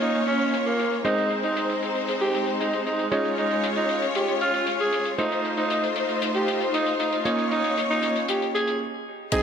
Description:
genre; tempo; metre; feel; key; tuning
italo disco; 116 BPM; 4/4; straight; unclear; A4 = 440 Hz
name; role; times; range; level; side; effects
growling alto saxophone; melody; 0.0-9.4 s; Bb3 to Ab4; -25 LUFS; right 1 dB; ping-pong delay
rich symphonic string section; sustained chords; 0.0-9.4 s; Ab3 to C6; -27 LUFS; left 1 dB; none
warm electric grand piano; stabs; 0.0-9.4 s; Ab3 to Eb5; -31 LUFS; right 2 dB; digital delay
damped 70s drum kit; drums; 0.0-9.4 s; crash cymbal, hi-hat, tambourine; -34 LUFS; left 5 dB; low-pass filter on hats, studio reverb, low-pass filter on cymbals, low-pass filter on perc, low-pass filter on room
electronic kick drum; drums; 9.3-9.4 s; none; -26 LUFS; equal; studio reverb
room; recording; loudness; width
wet plate reverb, RT60 2.0 s; bright 1980s-style digital production; -22 LUFS; side -7 dB against mid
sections
0.0-9.3 A section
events
stop 8.8-9.3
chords
0.0 Bbm; 1.0 Ab; 3.1 Db; 5.2 F7; 7.3 Bbm

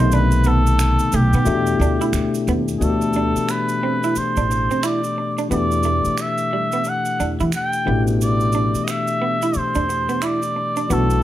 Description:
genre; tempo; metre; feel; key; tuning
R&B, neo-soul; 89 BPM; 4/4; swing 62% on 16ths; E minor; A4 = 441 Hz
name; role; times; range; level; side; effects
trumpet with cup mute; melody; 0.0-11.2 s; G4 to G5; -22 LUFS; right 1 dB; none
electric guitar through a small old amp; second line; 0.0-11.1 s; G3 to E4; -25 LUFS; right 5 dB; none
barky tine electric piano; accompaniment; 0.0-11.2 s; B2 to G4; -22 LUFS; left 4 dB; overdrive
upright bass; bass; 0.0-11.2 s; A1 to E3; -19 LUFS; equal; none
maracas and finger snaps; percussion; 0.1-11.2 s; none; -32 LUFS; right 7 dB; none
room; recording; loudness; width
light reverb; none; -17 LUFS; side -13 dB against mid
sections
0.0-2.8 A section; 2.8-11.2 B section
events
none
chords
0.0 B7b9; 1.5 Em7; 2.8 D9sus4; 5.5 Em7; 7.9 A7sus4

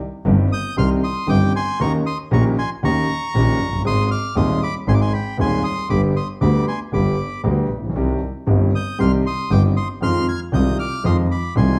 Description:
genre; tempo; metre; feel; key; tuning
tango; 117 BPM; 4/4; rubato; unclear; A4 = 440 Hz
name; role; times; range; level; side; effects
warm concert grand piano; accompaniment; 0.2-11.8 s; Eb1 to Ab4; -23 LUFS; equal; none
clear double bass; bass; 0.3-11.8 s; F#1 to F2; -23 LUFS; equal; none
bandoneon; melody; 0.5-11.8 s; G5 to Ab6; -28 LUFS; equal; plate reverb
room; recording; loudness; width
wet large studio reverb, RT60 0.9 s; heard from further back in the room; -19 LUFS; mono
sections
0.0-11.8 A section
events
none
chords
0.0 Cm; 1.8 Eb7; 3.9 Ab; 5.9 G; 8.0 Cm; 10.0 Fm7

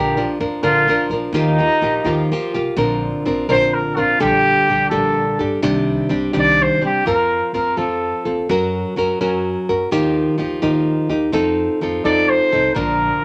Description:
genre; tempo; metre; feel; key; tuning
mexican folk, mariachi; 84 BPM (dotted quarters); 6/8; straight; Bb major; A4 = 440 Hz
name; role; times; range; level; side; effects
mellow trumpet; melody; 0.0-8.3, 12.0-13.2 s; Eb4 to D5; -19 LUFS; equal; none
nylon-string guitar; accompaniment; 0.0-13.2 s; Bb2 to Bb4; -20 LUFS; equal; none
upright bass; bass; 0.0-13.1 s; Bb1 to G2; -32 LUFS; equal; none
room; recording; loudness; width
moderate small room reverb, RT60 0.5 s; none; -18 LUFS; mono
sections
0.0-2.8 A section; 2.8-13.2 B section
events
none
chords
0.0 Bb; 1.3 Ebadd9; 2.8 Bbadd9; 4.2 Gmadd9/Bb; 5.6 Cmadd9; 7.0 Fsus4; 7.8 F; 8.5 Gb; 9.9 Ebadd9; 11.3 F7

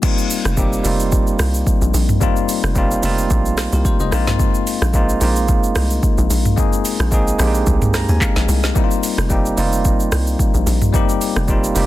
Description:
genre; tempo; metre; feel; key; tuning
amapiano; 110 BPM; 4/4; swing 55% on 16ths; F minor; A4 = 441 Hz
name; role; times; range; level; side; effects
bell-like tine electric piano; accompaniment; 0.0-11.9 s; G3 to Bb5; -20 LUFS; moving between left 10 dB and right 4 dB; auto-pan
afro-pop drum kit; drums; 0.0-11.9 s; crash cymbal, handclaps, hi-hat, kick drum, rim click, shaker, snare drum, toms; -18 LUFS; equal; overdrive, soft clipping on snare
hollow log drum bass; bass; 0.5-11.9 s; F1 to Eb2; -18 LUFS; equal; none
room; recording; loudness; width
little or no reverb; dense, heavily limited modern master; -14 LUFS; side -15 dB against mid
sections
0.0-11.9 A section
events
drop 0.0-11.9; tine electric piano fill 7.7-8.8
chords
0.0 F9sus4; 4.1 Bb9sus4; 8.8 F9sus4

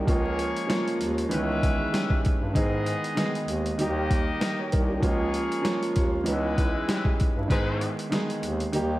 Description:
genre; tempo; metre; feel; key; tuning
hip hop, boom-bap hip-hop; 97 BPM; 4/4; swing 56% on 16ths; G# harmonic minor; A4 = 440 Hz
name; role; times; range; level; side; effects
warm upright piano; accompaniment; 0.0-9.0 s; D#3 to D#5; -28 LUFS; right 1 dB; high-pass filter, low-pass filter
warm bass clarinet; bass; 0.0-9.0 s; B#1 to G#2; -30 LUFS; equal; none
clear trumpet section; stabs; 0.1-7.9 s; G#3 to E5; -33 LUFS; left 3 dB; high-pass filter, low-pass filter, analog delay
boom bap sampler-style drum kit; drums; 0.1-8.9 s; hi-hat, kick drum, snare drum; -27 LUFS; equal; none
room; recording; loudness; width
moderate lush hall reverb, RT60 1.6 s, small room ambience; dreamy mix soaked in reverb, vinyl crackle; -23 LUFS; side -17 dB against mid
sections
0.0-7.5 A section; 7.5-9.0 A section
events
none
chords
0.1 A#m7/C#; 1.3 C#m7; 2.6 G#m; 3.8 D#; 5.0 A#m7/C#; 6.3 C#m7; 7.5 G#m

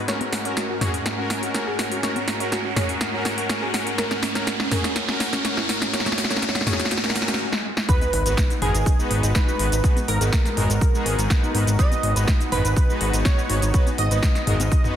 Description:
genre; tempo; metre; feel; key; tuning
progressive house; 123 BPM; 4/4; straight; G# minor; A4 = 441 Hz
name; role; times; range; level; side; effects
lush unison pad; sustained chords; 0.0-15.0 s; G#2 to A#4; -32 LUFS; equal; chorus, sidechain pumping
soft round pluck; arpeggios; 0.0-14.9 s; G#3 to C#5; -31 LUFS; equal; analog chorus, sidechain pumping, dub echo
riser, swell and sub drop; sound effects; 0.0-9.8 s; none; -30 LUFS; equal; none
soft supersaw; stabs; 0.1-15.0 s; G#3 to B4; -29 LUFS; left 1 dB; sidechain pumping, dub echo
big-room dance drum kit; drums; 0.1-14.9 s; hi-hat, shaker, snare drum; -25 LUFS; equal; sidechain pumping on hats, sidechain pumping on perc
electronic congas and toms; percussion; 0.2-14.9 s; none; -28 LUFS; left 2 dB; sidechain pumping on perc, sidechain pumping on toms
plucky unison lead; melody; 7.9-15.0 s; G#4 to D#5; -28 LUFS; right 1 dB; analog chorus, sidechain pumping, dub echo
soft synth bell; second line; 7.9-15.0 s; G#5 to D#6; -34 LUFS; right 3 dB; chorus, sidechain pumping, dub echo
electronic kick drum; drums; 7.9-14.8 s; none; -19 LUFS; equal; none
fat analog bass; bass; 8.1-14.7 s; G#1; -22 LUFS; equal; sidechain pumping
room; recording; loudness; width
light reverb, digital ambience; dense, heavily limited modern master; -19 LUFS; side -10 dB against mid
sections
0.0-7.9 A section; 7.9-15.0 B section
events
build-up 0.0-7.9; drum fill 0.0-7.4, 7.5-7.9; riser 0.0-7.4; filter sweep on synth pluck 0.0-7.9; swell 6.9-7.9; stop 7.4-7.9; drop 7.9-15.0; impact 7.9-9.8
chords
0.1 F#/G#; 7.9 G#m7

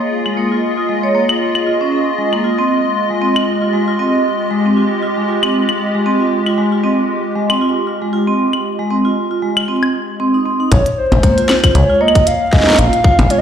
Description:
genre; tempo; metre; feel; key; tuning
IDM; 116 BPM; 4/4; swing 56% on 16ths; unclear; A4 = 441 Hz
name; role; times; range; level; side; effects
hollow soft pad; sustained chords; 0.0-10.7 s; Ab3 to Eb5; -18 LUFS; equal; ensemble chorus
vibraphone with medium hard mallets; arpeggios; 0.3-13.4 s; Ab3 to Db5; -16 LUFS; right 1 dB; low-pass filter, digital delay
glitchy drum kit; drums; 0.3-13.4 s; claves, hi-hat, percussion blips, snare drum; -19 LUFS; left 1 dB; low-pass filter on perc, studio reverb, low-pass filter on hats, low-pass filter on snare, digital delay
warbly nostalgic lead; melody; 10.7-13.4 s; C5 to F5; -14 LUFS; equal; chorus, tape echo
deep acid bass; bass; 10.7-13.3 s; Bb1 to Db2; -12 LUFS; left 1 dB; none
electronic kick drum; drums; 10.7-13.2 s; none; -12 LUFS; left 1 dB; studio reverb
room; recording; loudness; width
wet echo chamber reverb, RT60 2.2 s; played on a big sound system in a bare room, large studio reverb; -12 LUFS; side -8 dB against mid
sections
0.0-10.7 A section; 10.7-13.4 B section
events
none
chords
0.0 Bb7(no3); 2.4 Fm7/Ab; 10.7 Bbm7

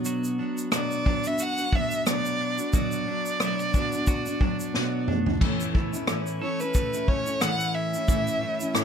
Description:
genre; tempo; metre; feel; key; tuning
acoustic pop; 90 BPM; 4/4; swing 55% on 16ths; A major; A4 = 439 Hz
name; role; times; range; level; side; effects
picked steel-string acoustic guitar; accompaniment; 0.0-8.8 s; A2 to F#4; -28 LUFS; equal; double-tracked left and right
clean electric guitar; arpeggios; 0.0-8.8 s; E3 to A4; -37 LUFS; right 5 dB; none
unplugged drum kit; drums; 0.1-8.8 s; crash cymbal, kick drum, rim click, shaker, snare drum, toms; -26 LUFS; equal; none
rich violin; melody; 0.7-8.8 s; B4 to F#5; -28 LUFS; equal; none
room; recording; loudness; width
little or no reverb; none; -23 LUFS; side -7 dB against mid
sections
0.0-5.4 A section; 5.4-8.8 B section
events
drum fill 4.7-5.4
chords
0.0 Bm; 5.4 A

